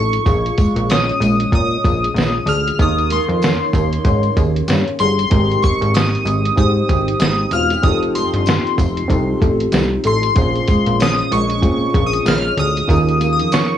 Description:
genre	indie pop, bedroom pop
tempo	95 BPM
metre	4/4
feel	swing 60% on 16ths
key	unclear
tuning	A4 = 440 Hz
part	chorused retro synth keys	melody	0.0-13.8 s	C6 to F6	-20 LUFS	left 1 dB	wide subtle chorus, cassette tape, tape echo
part	flamenco guitar	accompaniment	0.0-13.8 s	Bb2 to C5	-21 LUFS	left 2 dB	lush chorus, vibrato effect, cassette tape
part	plucky analog bass	bass	0.0-13.7 s	Fb1 to Bb2	-19 LUFS	right 1 dB	none
part	lo-fi sampler-style drum kit	drums	0.1-13.7 s	hi-hat, kick drum, snare drum	-18 LUFS	equal	cassette tape
part	tambourine	percussion	0.3-13.7 s	none	-38 LUFS	left 10 dB	none
part	reed electric piano	accompaniment	5.3-13.8 s	C4 to C5	-23 LUFS	right 2 dB	cassette tape
room	little or no reverb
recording	home recording on cassette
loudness	-14 LUFS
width	side -10 dB against mid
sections	0.0-13.8 A section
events	none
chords	0.3 Bbm7; 2.8 Eb7sus4; 5.3 Abmaj7; 7.8 F7; 10.4 Bbm7; 12.9 Eb7sus4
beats	| 0.26 0.89 1.52 2.16 | 2.79 3.42 4.05 4.68 | 5.32 5.95 6.58 7.21 | 7.84 8.47 9.10 9.73 | 10.37 11.00 11.63 12.26 | 12.89 13.52

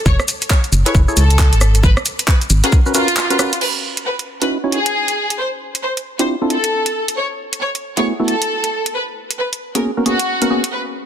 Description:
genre	UK garage, two-step garage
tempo	135 BPM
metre	4/4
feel	swing 61% on 16ths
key	unclear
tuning	A4 = 439 Hz
part	warm symphonic violin section	melody	0.1-10.8 s	E#4 to C#5	-20 LUFS	equal	ping-pong delay
part	organ-like FM bass	bass	0.1-2.6 s	F#1 to C#2	-13 LUFS	equal	none
part	electronic kick drum	drums	0.1-2.8 s	none	-13 LUFS	equal	overdrive, studio reverb
part	garage drum kit	drums	0.1-10.7 s	crash cymbal, handclaps, hi-hat, rim click, shaker	-19 LUFS	right 1 dB	overdrive, studio reverb
part	percussive organ stab	stabs	0.9-10.6 s	A3 to C#5	-20 LUFS	equal	chorus, ping-pong delay
room	light reverb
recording	dense, heavily limited modern master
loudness	-14 LUFS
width	side -9 dB against mid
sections	0.0-3.6 A section; 3.6-11.1 B section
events	break 3.2-3.6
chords	0.0 F#m11; 1.6 G#m11; 3.6 C#m11; 5.2 Dm11; 6.9 F#m11; 8.7 G#m11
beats	| 0.06 0.50 0.95 1.39 | 1.83 2.28 2.72 3.17 | 3.61 4.06 4.50 4.95 | 5.39 5.83 6.28 6.72 | 7.17 7.61 8.06 8.50 | 8.95 9.39 9.84 10.28 | 10.72

